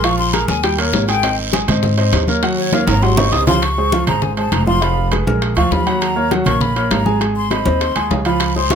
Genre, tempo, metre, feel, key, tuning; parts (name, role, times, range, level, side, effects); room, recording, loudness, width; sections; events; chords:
Afro-Cuban jazz; 201 BPM; 4/4; straight; Ab major, Db major from 3.6 s; A4 = 440 Hz
breathy hollow jazz flute; second line; 0.0-8.8 s; Bb4 to Eb6; -20 LUFS; left 2 dB
warm grand piano; accompaniment; 0.0-8.8 s; F3 to Ab5; -18 LUFS; right 1 dB
upright bass; bass; 0.0-8.8 s; F1 to Ab2; -19 LUFS; equal
bongos; percussion; 0.0-8.8 s; -25 LUFS; left 8 dB
congas; percussion; 0.0-8.8 s; -23 LUFS; left 1 dB
guiro; percussion; 0.0-3.6, 8.4-8.8 s; -26 LUFS; right 6 dB
timbales; percussion; 0.0-8.8 s; -24 LUFS; right 8 dB
light reverb; close, detailed microphones; -14 LUFS; side -7 dB against mid
0.0-3.6 A section; 3.6-8.8 A section
flute solo 0.0-8.8; drum fill 2.7-3.6
0.0 Bb5; 0.6 Eb7; 1.2 Ab; 2.4 Ebm7; 3.0 Ab7; 3.6 Dbmaj7; 4.8 Fdim; 5.4 Bb7b13; 6.0 Ebm7; 7.2 Ab